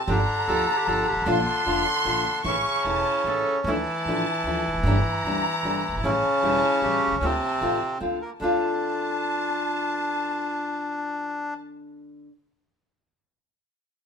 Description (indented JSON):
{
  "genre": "tango",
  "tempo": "152 BPM",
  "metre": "3/4",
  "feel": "rubato",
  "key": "D minor",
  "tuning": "A4 = 441 Hz",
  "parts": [
    { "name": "bandoneon", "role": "melody", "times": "0.0-11.5 s", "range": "C3 to Bb4", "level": "-25 LUFS", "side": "equal", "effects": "none" },
    { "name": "dark symphonic violin section", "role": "second line", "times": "0.0-11.5 s", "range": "A5 to C#6", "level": "-29 LUFS", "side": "equal", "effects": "none" },
    { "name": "nylon-string guitar", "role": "accompaniment", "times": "0.1-12.3 s", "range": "D3 to G4", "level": "-29 LUFS", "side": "left 1 dB", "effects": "none" },
    { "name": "upright bass", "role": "bass", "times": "0.1-8.6 s", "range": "E1 to D2", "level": "-30 LUFS", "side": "right 1 dB", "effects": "none" },
    { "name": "bright clarinet", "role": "second line", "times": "0.5-3.6, 6.4-11.5 s", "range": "E4 to A4", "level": "-34 LUFS", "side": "right 3 dB", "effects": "none" }
  ],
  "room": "moderate studio reverb, RT60 0.9 s",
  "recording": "minimal, uncompressed stereo recording",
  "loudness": "-22 LUFS",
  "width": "side -6 dB against mid",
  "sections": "0.0-8.4 A section; 8.4-10.8 B section",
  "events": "none",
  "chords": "0.1 Gm7; 1.3 Bb; 2.5 A; 3.7 Dmadd9; 4.8 Gm; 6.0 A7; 7.2 Dm7"
}